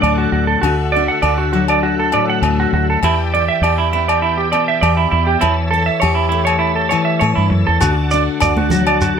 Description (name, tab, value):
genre	highlife guitar band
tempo	100 BPM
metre	4/4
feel	straight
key	D major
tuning	A4 = 443 Hz
part	picked steel-string acoustic guitar	accompaniment	0.0-9.2 s	A2 to A4	-20 LUFS	left 8 dB	none
part	overdriven tonewheel organ	sustained chords	0.0-9.2 s	A4 to A5	-27 LUFS	equal	chorus vibrato, slow rotary speaker
part	semi-hollow electric guitar	arpeggios	0.0-9.1 s	E4 to F#5	-17 LUFS	right 6 dB	slapback echo
part	deep dub fingered electric bass	bass	0.0-9.2 s	D2 to A2	-19 LUFS	right 1 dB	none
part	agogo bells	percussion	0.0-9.0 s	none	-22 LUFS	left 5 dB	none
part	shekere	percussion	7.8-9.2 s	none	-21 LUFS	right 1 dB	none
part	congas	percussion	8.6-8.9 s	none	-21 LUFS	right 5 dB	none
room	light reverb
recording	none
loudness	-13 LUFS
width	side -7 dB against mid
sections	0.0-9.2 A section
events	none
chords	0.0 D; 3.0 Em7; 5.4 A/E; 7.8 D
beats	0.03 | 0.63 1.23 1.83 2.43 | 3.03 3.63 4.23 4.83 | 5.43 6.03 6.62 7.22 | 7.82 8.42 9.02